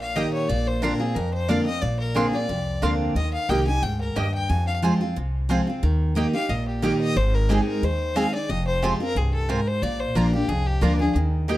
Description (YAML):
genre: bluegrass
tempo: 180 BPM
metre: 4/4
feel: swing 54% on 8ths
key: unclear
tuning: A4 = 440 Hz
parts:
  - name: clear fiddle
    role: melody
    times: 0.0-11.1 s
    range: G4 to Ab5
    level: -28 LUFS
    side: left 3 dB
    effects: none
  - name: picked steel-string acoustic guitar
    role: accompaniment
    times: 0.0-11.6 s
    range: F2 to Ab4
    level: -24 LUFS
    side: equal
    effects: none
  - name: upright bass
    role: bass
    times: 0.0-11.6 s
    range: F1 to F2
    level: -25 LUFS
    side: equal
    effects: none
  - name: mandolin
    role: stabs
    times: 0.2-11.6 s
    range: Bb3 to C6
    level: -29 LUFS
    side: right 4 dB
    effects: none
room: small room ambience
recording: dry, close 1970s-style studio recording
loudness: -21 LUFS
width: side -15 dB against mid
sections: 0.0-5.8 A section; 5.8-11.6 B section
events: none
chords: 0.5 Bbadd9; 3.2 Eb; 4.5 Fm; 5.8 Eb; 7.2 Ab; 8.5 Fm; 9.8 Bb